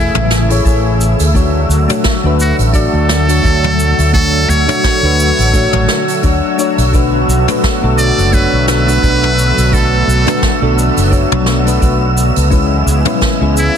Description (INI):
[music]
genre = sunset chillout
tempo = 86 BPM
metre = 4/4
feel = swing 57% on 16ths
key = unclear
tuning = A4 = 444 Hz
[part]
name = trumpet with metal mute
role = melody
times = 0.0-13.8 s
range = E4 to D5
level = -18 LUFS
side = equal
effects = tape echo
[part]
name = soft electric-piano-like synth keys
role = accompaniment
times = 0.0-13.8 s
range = G#3 to E5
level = -18 LUFS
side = moving between left 7 dB and right 6 dB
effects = chorus, auto-pan, ping-pong delay
[part]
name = lush unison pad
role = sustained chords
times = 0.0-13.8 s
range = C#3 to G#4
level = -18 LUFS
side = equal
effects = chorus
[part]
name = fretless electric bass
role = bass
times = 0.0-13.7 s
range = F#1 to D2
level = -14 LUFS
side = equal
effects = none
[part]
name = wind-like tuned noise texture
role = texture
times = 0.0-13.8 s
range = E6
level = -24 LUFS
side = right 3 dB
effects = built-in reverb
[part]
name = jazz brush drum kit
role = drums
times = 0.1-13.7 s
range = hi-hat, shaker, snare drum, toms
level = -19 LUFS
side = left 1 dB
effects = none
[part]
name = electronic kick drum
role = drums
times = 0.7-13.4 s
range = none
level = -15 LUFS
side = equal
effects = none
[sound]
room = light reverb, small room ambience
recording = dense, heavily limited modern master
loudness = -10 LUFS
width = side -8 dB against mid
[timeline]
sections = 0.0-13.8 A section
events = none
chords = 0.0 Amaj7; 1.4 Dmaj7; 6.9 Bm7; 12.5 C#m7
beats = 0.66 | 1.35 2.05 2.75 3.45 | 4.14 4.84 5.54 6.24 | 6.93 7.63 8.33 9.03 | 9.73 10.42 11.12 11.82 | 12.52 13.21